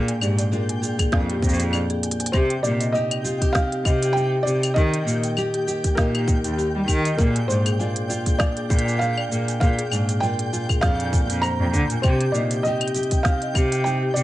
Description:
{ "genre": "folktronica", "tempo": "99 BPM", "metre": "4/4", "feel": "swing 56% on 16ths", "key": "unclear", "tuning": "A4 = 440 Hz", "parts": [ { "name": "felt-muted upright piano", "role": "melody", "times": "0.0-14.2 s", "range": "Bb4 to Bb5", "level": "-27 LUFS", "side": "right 1 dB", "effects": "ping-pong delay" }, { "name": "marimba with medium mallets", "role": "second line", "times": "0.0-14.2 s", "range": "D4 to Ab5", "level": "-30 LUFS", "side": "left 3 dB", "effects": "vintage 12-bit sampler grit, tape echo" }, { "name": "nylon-string guitar", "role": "arpeggios", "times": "0.0-14.2 s", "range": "Bb2 to G4", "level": "-28 LUFS", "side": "equal", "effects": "ping-pong delay" }, { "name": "rich cello", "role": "bass", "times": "0.0-14.2 s", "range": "Eb2 to G3", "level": "-24 LUFS", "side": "equal", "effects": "none" }, { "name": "flickering grainy texture", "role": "texture", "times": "0.0-14.2 s", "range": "G5 to G6", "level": "-36 LUFS", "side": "right 1 dB", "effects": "built-in reverb" }, { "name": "organic electronic drum kit", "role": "drums", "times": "0.1-14.2 s", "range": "cabasa, claves, hi-hat, snare drum", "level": "-28 LUFS", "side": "equal", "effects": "none" }, { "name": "electronic kick drum", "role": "drums", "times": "1.0-13.7 s", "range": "none", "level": "-20 LUFS", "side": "equal", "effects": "none" } ], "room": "light reverb, small room ambience", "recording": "vinyl crackle, nothing above 10.4 kHz", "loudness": "-19 LUFS", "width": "side -15 dB against mid", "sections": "0.0-14.2 A section", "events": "break 1.7-2.3; drum fill 2.0-2.3", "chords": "0.0 Bb; 2.3 Cm; 4.8 Eb; 7.2 Bb; 12.0 Cm" }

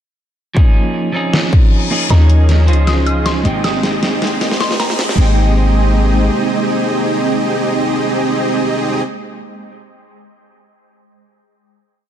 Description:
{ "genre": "future bass", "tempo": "156 BPM", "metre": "4/4", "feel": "swing 53% on 16ths, half-time", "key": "Ab major", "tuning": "A4 = 440 Hz", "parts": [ { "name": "electric guitar at the edge of break-up", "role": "accompaniment", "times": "0.5-9.7 s", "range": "F3 to G5", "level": "-20 LUFS", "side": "right 2 dB", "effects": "harmonic tremolo, sidechain pumping, dub echo" }, { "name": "electronic kick drum", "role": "drums", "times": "0.6-1.6 s", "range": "none", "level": "-10 LUFS", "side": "equal", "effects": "none" }, { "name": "dubstep drum kit", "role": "drums", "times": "1.3-5.3 s", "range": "crash cymbal, hi-hat, snare drum", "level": "-19 LUFS", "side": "equal", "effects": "none" }, { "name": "reverse cymbal and riser", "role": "sound effects", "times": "1.5-5.2 s", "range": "none", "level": "-26 LUFS", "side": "left 4 dB", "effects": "none" }, { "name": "mallet-like synth pluck", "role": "melody", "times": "2.1-5.1 s", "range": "Bb5 to F6", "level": "-24 LUFS", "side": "left 1 dB", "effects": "chorus, sidechain pumping, dub echo" }, { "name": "shimmering ambient pad", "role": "sustained chords", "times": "3.0-9.0 s", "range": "Ab3 to C6", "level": "-27 LUFS", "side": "left 1 dB", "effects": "chorus, built-in reverb, phaser, sidechain pumping" }, { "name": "dense compressed supersaw", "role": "riff", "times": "2.1-9.0 s", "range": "C4 to Eb5", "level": "-17 LUFS", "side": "right 1 dB", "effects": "sidechain pumping, low-pass filter, dub echo" }, { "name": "warm 808-style bass", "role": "bass", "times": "2.1-6.3 s", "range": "Ab1 to Eb2", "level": "-12 LUFS", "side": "equal", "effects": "sidechain pumping" } ], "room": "light reverb", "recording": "dark, warm production, high-pass filter", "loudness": "-12 LUFS", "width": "side -10 dB against mid", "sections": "0.6-2.1 intro; 2.1-5.2 build; 5.2-8.3 final chord", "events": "reverse cymbal 1.5-2.1; build-up 2.1-5.2; drum fill 2.1-5.2; riser 2.1-5.2; filter sweep on supersaw synth 2.1-5.2; filter sweep on synth pluck 2.1-5.2; filter sweep 2.1-5.2", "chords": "0.6 Eb7sus4; 1.1 Dbmaj9; 1.9 Eb7sus4; 2.7 Dbmaj9; 3.5 Abmaj7" }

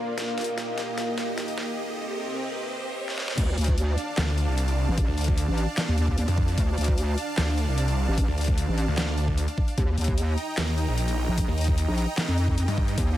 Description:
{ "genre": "heavy wobble dubstep", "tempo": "150 BPM", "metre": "4/4", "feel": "half-time", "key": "D phrygian", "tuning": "A4 = 442 Hz", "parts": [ { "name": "supersaw pad", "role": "sustained chords", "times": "0.0-13.2 s", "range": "Bb2 to Bb5", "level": "-32 LUFS", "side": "right 1 dB", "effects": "sidechain pumping" }, { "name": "riser", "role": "sound effects", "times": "0.0-3.4 s", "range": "none", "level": "-37 LUFS", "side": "right 1 dB", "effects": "none" }, { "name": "deep dark ambient pad", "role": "texture", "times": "0.0-1.8 s", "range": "Bb3 to C6", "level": "-33 LUFS", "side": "left 1 dB", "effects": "chorus, built-in reverb, sidechain pumping" }, { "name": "dubstep drum kit", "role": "drums", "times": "0.2-13.1 s", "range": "crash cymbal, handclaps, hi-hat, snare drum", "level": "-32 LUFS", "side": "equal", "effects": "overdrive, high-pass filter on hats, high-pass filter on toms, high-pass filter on snare, high-pass filter on cymbals" }, { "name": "wobble bass", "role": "bass", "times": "3.4-13.2 s", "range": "A1 to F2", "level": "-24 LUFS", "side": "equal", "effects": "chorus, overdrive" }, { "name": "electronic kick drum", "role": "drums", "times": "3.4-13.1 s", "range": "none", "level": "-25 LUFS", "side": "equal", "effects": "overdrive" }, { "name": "snarling distorted saw bass", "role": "bass", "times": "4.2-13.0 s", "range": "Bb1 to G2", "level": "-25 LUFS", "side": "equal", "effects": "distortion, overdrive" } ], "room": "light reverb", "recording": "high-pass filter", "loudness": "-23 LUFS", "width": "side -13 dB against mid", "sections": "0.0-3.4 A section; 3.4-13.2 B section", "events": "build-up 0.0-3.4; drum fill 0.0-1.8, 3.1; riser 0.0-3.4; filter sweep 0.0-3.4; break 1.8-3.4; drop 3.4-13.2", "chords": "0.2 Eb/Bb; 1.8 Cm; 3.4 Dm; 9.8 Eb" }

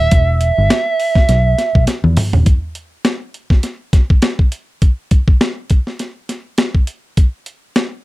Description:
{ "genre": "funk", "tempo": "102 BPM", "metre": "4/4", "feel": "swing 56% on 16ths", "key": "E minor", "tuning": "A4 = 440 Hz", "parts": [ { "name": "fuzz lead guitar", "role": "melody", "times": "0.0-1.8 s", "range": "E5", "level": "-16 LUFS", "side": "right 4 dB", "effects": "distortion, plate reverb" }, { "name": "vintage muted fingered electric bass", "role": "bass", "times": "0.0-2.4 s", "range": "D#1 to E2", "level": "-14 LUFS", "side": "equal", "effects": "none" }, { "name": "breakbeat sampler-style drum kit", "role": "drums", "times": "0.1-7.9 s", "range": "hi-hat, kick drum, snare drum, toms", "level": "-13 LUFS", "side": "equal", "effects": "none" } ], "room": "little or no reverb", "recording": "none", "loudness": "-13 LUFS", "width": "side -18 dB against mid", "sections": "0.0-2.5 A section; 2.5-8.0 B section", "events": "drum fill 1.9-2.5", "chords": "0.0 E5; 2.5 N.C." }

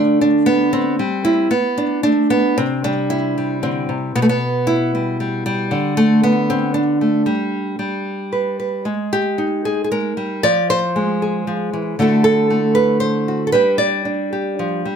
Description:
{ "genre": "folk, solo fingerstyle acoustic guitar", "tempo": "115 BPM", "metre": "3/4", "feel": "rubato", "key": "unclear", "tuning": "A4 = 441 Hz", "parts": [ { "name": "nylon-string guitar", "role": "solo", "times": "0.0-15.0 s", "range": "B2 to D5", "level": "-15 LUFS", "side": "equal", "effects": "slapback echo" } ], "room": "light reverb", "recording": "close, detailed microphones", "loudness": "-15 LUFS", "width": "side -7 dB against mid", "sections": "0.0-8.9 A section; 8.9-15.0 B section", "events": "none", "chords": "0.0 D5; 1.0 Gsus4; 1.5 Asus24; 2.6 C; 4.2 G6/B; 5.7 D5; 7.3 N.C.; 7.8 G; 8.9 Absus2; 10.4 Fm; 12.0 Dadd9; 13.5 G5" }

